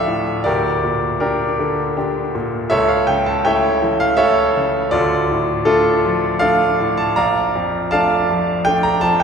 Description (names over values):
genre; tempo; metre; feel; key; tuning
classical, romantic character piece for solo piano; 81 BPM; 3/4; rubato; D minor; A4 = 441 Hz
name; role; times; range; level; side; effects
bright grand piano; solo; 0.0-9.2 s; Bb1 to Bb5; -15 LUFS; equal; none
room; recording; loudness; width
wet concert hall reverb, RT60 2.2 s; recorded in a church or concert hall; -15 LUFS; side -6 dB against mid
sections
0.0-9.2 A section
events
none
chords
0.5 Gm/D; 2.7 A/C#; 5.0 Dm; 7.2 Bbmaj7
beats
| 0.47 1.23 1.98 | 2.75 3.49 4.21 | 4.95 5.69 6.43 | 7.18 7.92 8.65